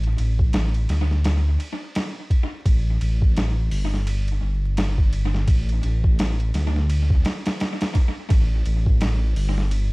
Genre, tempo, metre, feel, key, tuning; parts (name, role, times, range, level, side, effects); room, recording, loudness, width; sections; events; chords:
trip hop; 85 BPM; 4/4; swing 59% on 16ths; A4 = 442 Hz
dark detuned saw bass; bass; 0.0-9.9 s; G1 to D2; -21 LUFS; equal
boom bap sampler-style drum kit; drums; 0.0-9.9 s; hi-hat, kick drum, ride cymbal, snare drum; -22 LUFS; equal; overdrive, studio reverb, tape echo
little or no reverb; echo-heavy mix, vinyl crackle; -19 LUFS; side -25 dB against mid
0.0-9.9 A section